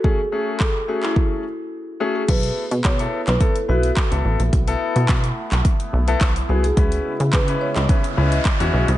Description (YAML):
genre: dance-pop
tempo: 107 BPM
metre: 4/4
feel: straight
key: unclear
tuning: A4 = 444 Hz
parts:
  - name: marimba with medium mallets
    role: melody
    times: 0.0-8.7 s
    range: E4 to C#5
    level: -26 LUFS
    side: right 1 dB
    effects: digital delay
  - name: clear concert grand piano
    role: accompaniment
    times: 0.0-8.9 s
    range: A3 to B4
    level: -26 LUFS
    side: left 5 dB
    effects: sidechain pumping
  - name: deep house drum kit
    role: drums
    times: 0.0-9.0 s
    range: crash cymbal, handclaps, hi-hat, kick drum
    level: -20 LUFS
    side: equal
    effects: none
  - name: sweeping resonant pad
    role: sustained chords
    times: 2.3-9.0 s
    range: C#3 to D#5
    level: -30 LUFS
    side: equal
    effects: chorus, phaser, sidechain pumping
  - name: plucky analog bass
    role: bass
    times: 2.3-9.0 s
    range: A1 to C#3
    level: -20 LUFS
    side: equal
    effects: sidechain pumping
  - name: noise sweep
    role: sound effects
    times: 7.4-9.0 s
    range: none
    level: -30 LUFS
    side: right 3 dB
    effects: none
room: little or no reverb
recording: nothing above 10.9 kHz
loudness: -17 LUFS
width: side -14 dB against mid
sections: 0.0-2.3 A section; 2.3-9.0 B section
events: break 1.7-2.3; noise sweep 7.4-9.0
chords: 0.0 Amaj7; 2.3 B7sus4; 6.8 C#m7